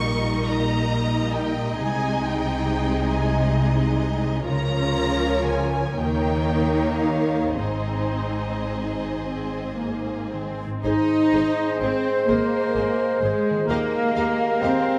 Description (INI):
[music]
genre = classical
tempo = 35-46 BPM (dotted quarters)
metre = 6/8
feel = rubato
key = Ab major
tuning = A4 = 442 Hz
[part]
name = dark symphonic violin section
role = melody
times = 0.0-15.0 s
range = Ab4 to Db6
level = -35 LUFS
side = equal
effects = none
[part]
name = warm symphonic violin section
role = second line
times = 0.0-14.7 s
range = Ab4 to F5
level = -32 LUFS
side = equal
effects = none
[part]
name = warm symphonic viola section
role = accompaniment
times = 0.0-14.7 s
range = F3 to Bb4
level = -31 LUFS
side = equal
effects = none
[part]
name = concert harp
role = arpeggios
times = 0.0-15.0 s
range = Ab2 to Eb5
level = -33 LUFS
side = equal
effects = none
[part]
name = rich studio double bass section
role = bass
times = 0.0-14.7 s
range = Ab1 to Eb2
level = -31 LUFS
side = equal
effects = none
[part]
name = rich symphonic cello section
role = bass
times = 0.0-15.0 s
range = Ab2 to Eb4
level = -29 LUFS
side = equal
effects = none
[part]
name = clear cor anglais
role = second line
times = 10.8-15.0 s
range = Bb4 to C5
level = -31 LUFS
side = equal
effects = none
[part]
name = dark clarinet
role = second line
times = 10.8-15.0 s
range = Ab4 to Eb5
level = -32 LUFS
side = equal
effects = none
[part]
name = silver concert flute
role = second line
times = 10.8-15.0 s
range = C5 to F5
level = -34 LUFS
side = equal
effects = none
[part]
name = clear bassoon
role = accompaniment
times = 10.8-15.0 s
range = Ab3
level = -34 LUFS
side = equal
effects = none
[part]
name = mellow French horn section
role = sustained chords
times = 10.9-15.0 s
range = G4 to F5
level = -30 LUFS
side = equal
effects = none
[sound]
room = moderate concert hall reverb, RT60 2.3 s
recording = none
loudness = -23 LUFS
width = mono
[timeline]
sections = 0.0-10.8 A section; 10.8-15.0 B section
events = none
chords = 0.0 Eb7/Bb; 1.8 Ab/C; 4.5 Bbm/Db; 6.0 Eb7; 7.6 Ab; 13.7 Ebadd9